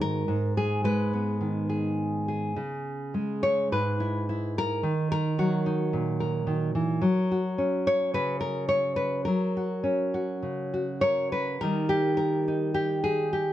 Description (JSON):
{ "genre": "folk, solo fingerstyle acoustic guitar", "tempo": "106 BPM", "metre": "4/4", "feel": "rubato", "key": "unclear", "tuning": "A4 = 440 Hz", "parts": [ { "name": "nylon-string guitar", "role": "solo", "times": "0.0-13.5 s", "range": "G#2 to C#5", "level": "-25 LUFS", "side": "equal", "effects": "none" } ], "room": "light reverb", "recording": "dark, warm production", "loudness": "-25 LUFS", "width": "side -13 dB against mid", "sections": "0.0-11.6 A section; 11.6-13.5 B section", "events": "none", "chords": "0.0 G#m; 2.6 C#m7; 4.8 D#m; 7.0 F#; 11.6 D#", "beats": "| 0.27 0.83 1.40 1.98 | 2.57 3.14 3.71 4.27 | 4.83 5.38 5.93 6.48 | 7.04 7.59 8.15 8.71 | 9.27 9.84 10.42 11.01 | 11.60 12.18 12.75 13.31" }